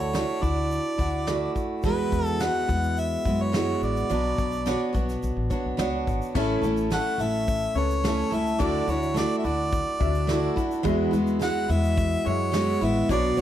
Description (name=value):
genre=acoustic pop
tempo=107 BPM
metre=4/4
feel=straight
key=A major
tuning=A4 = 440 Hz
part: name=clear harmonica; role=melody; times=0.0-13.4 s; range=B4 to F#5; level=-29 LUFS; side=equal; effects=plate reverb
part: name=picked steel-string acoustic guitar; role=accompaniment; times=0.0-13.4 s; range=E2 to C#5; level=-26 LUFS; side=right 2 dB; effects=none
part: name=upright bass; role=bass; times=0.0-13.4 s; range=G#1 to F#2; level=-29 LUFS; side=left 1 dB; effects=none
part: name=soft brush drum kit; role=drums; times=0.0-13.4 s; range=crash cymbal, kick drum, shaker, snare drum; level=-31 LUFS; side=left 1 dB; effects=none
part: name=bright upright piano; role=accompaniment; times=6.3-13.4 s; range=G#3 to E5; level=-32 LUFS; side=left 8 dB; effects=none
room=moderate studio reverb, RT60 0.6 s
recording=none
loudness=-22 LUFS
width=side -11 dB against mid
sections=0.0-6.4 A section; 6.4-13.4 B section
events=none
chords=0.0 Dadd9; 1.8 Eadd9; 4.1 Bmadd9; 6.4 A; 8.6 Dadd9; 10.8 Eadd9